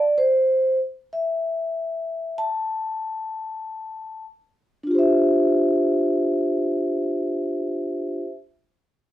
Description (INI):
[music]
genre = hip hop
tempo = free time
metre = none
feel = none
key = D minor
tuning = A4 = 440 Hz
[part]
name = vibraphone with soft mallets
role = solo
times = 0.0-8.3 s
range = D4 to A5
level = -20 LUFS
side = equal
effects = none
[sound]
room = light reverb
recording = band playing live in one room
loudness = -20 LUFS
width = side -13 dB against mid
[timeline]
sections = 0.0-4.9 A section; 4.9-7.4 B section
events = vibraphone solo 0.0-4.9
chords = 0.0 N.C.; 4.9 Dm11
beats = free time